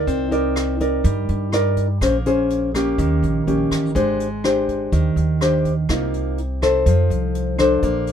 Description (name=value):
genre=bossa nova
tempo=124 BPM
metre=4/4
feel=straight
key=unclear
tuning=A4 = 444 Hz
part: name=nylon-string guitar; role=accompaniment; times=0.0-8.1 s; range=C3 to D5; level=-19 LUFS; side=left 1 dB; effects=none
part: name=upright bass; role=bass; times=0.0-8.1 s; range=Ab1 to G2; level=-22 LUFS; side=equal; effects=none
part: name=vintage brush drum kit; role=drums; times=0.1-8.1 s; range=hi-hat, kick drum, rim click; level=-26 LUFS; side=equal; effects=none
room=little or no reverb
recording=minimal, uncompressed stereo recording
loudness=-17 LUFS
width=side -8 dB against mid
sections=0.0-8.1 A section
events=none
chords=0.1 Cm9; 2.0 Bbm9; 3.0 Eb7; 4.0 Abmaj7#11; 5.9 Cm7; 6.9 F7